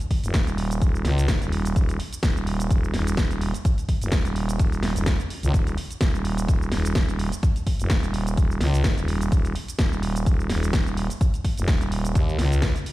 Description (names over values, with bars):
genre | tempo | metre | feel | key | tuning
bass house | 127 BPM | 4/4 | swing 55% on 16ths | unclear | A4 = 440 Hz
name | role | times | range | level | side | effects
house drum kit | drums | 0.0-12.9 s | hi-hat, shaker, snare drum | -30 LUFS | equal | none
electronic kick drum | drums | 0.1-12.7 s | none | -22 LUFS | equal | none
growling FM bass | bass | 0.2-12.7 s | Eb1 to Eb2 | -24 LUFS | equal | sidechain pumping
room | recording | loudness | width
little or no reverb | played on a big sound system in a bare room, large studio reverb | -21 LUFS | side -17 dB against mid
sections
0.0-12.9 A section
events
none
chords
none